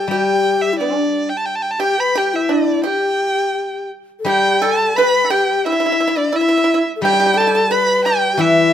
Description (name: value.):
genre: chinese traditional, Chinese chamber ensemble.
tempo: 87 BPM.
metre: 2/4.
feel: rubato.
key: G gong mode.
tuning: A4 = 440 Hz.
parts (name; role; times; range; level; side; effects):
clear erhu; melody; 0.0-8.7 s; D5 to B5; -17 LUFS; right 1 dB; none.
breathy mellow xiao; second line; 0.0-8.7 s; D4 to B4; -18 LUFS; left 4 dB; none.
pipa; second line; 0.0-8.7 s; D4 to B4; -22 LUFS; right 6 dB; none.
steel-string zither; accompaniment; 0.0-2.2, 4.2-8.7 s; E3 to G3; -22 LUFS; left 3 dB; none.
room: light reverb.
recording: close, detailed microphones.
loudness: -14 LUFS.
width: side -10 dB against mid.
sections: 0.0-4.3 A section; 4.3-8.7 B section.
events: none.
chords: none.